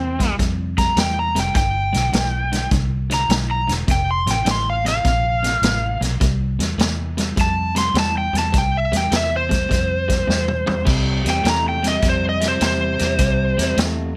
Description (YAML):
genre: electric blues shuffle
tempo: 103 BPM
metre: 4/4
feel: swing 67% on 8ths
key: C mixolydian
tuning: A4 = 440 Hz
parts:
  - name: overdriven slide guitar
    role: melody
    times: 0.0-13.8 s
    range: C4 to C6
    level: -23 LUFS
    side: equal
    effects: plate reverb
  - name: electric guitar through a small old amp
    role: riff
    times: 0.0-14.1 s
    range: F2 to A3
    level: -28 LUFS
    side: equal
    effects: none
  - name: vintage muted fingered electric bass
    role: bass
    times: 0.0-14.2 s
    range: E1 to F2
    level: -26 LUFS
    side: equal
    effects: none
  - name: vintage drum kit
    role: drums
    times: 0.2-14.0 s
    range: crash cymbal, hi-hat, kick drum, snare drum, toms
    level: -24 LUFS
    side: equal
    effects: none
room: moderate studio ambience, RT60 0.5 s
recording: none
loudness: -19 LUFS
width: mono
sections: 0.0-10.9 A section; 10.9-14.2 B section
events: drum fill 10.3-10.9; electric slide guitar solo 10.9-14.2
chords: 0.0 C; 1.6 G; 3.9 F; 6.2 C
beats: 0.39 0.97 | 1.55 2.13 2.72 3.30 | 3.88 4.46 5.05 5.63 | 6.21 6.79 7.38 7.96 | 8.54 9.12 9.70 10.29 | 10.87 11.45 12.03 12.61 | 13.20 13.78